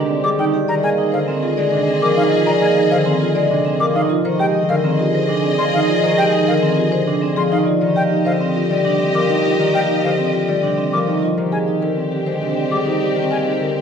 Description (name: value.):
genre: classical, minimalist pattern music.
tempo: 101 BPM.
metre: 3/4.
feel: straight.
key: F dorian.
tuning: A4 = 440 Hz.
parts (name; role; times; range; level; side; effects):
mellow hollow wooden-headed alto flute; second line; 0.0-13.8 s; G4 to Ab4; -24 LUFS; right 2 dB; none.
concert harp; accompaniment; 0.0-13.8 s; C3 to Bb3; -20 LUFS; equal; none.
rich symphonic violin section; sustained chords; 0.0-13.8 s; C4 to Eb5; -24 LUFS; left 3 dB; none.
vibraphone with soft mallets; arpeggios; 0.0-13.8 s; C4 to Ab4; -23 LUFS; right 10 dB; none.
marimba with soft mallets; melody; 0.1-13.8 s; G4 to F5; -22 LUFS; left 6 dB; none.
concert flute; arpeggios; 0.2-13.4 s; F5 to D6; -24 LUFS; left 2 dB; none.
room: wet scoring stage reverb, RT60 1.8 s.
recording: none.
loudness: -15 LUFS.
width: side -7 dB against mid.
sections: 0.0-13.8 A section.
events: none.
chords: 0.0 Abmaj9; 0.7 Bb9sus4; 4.2 Fm11; 7.8 Eb69; 11.4 Abmaj9.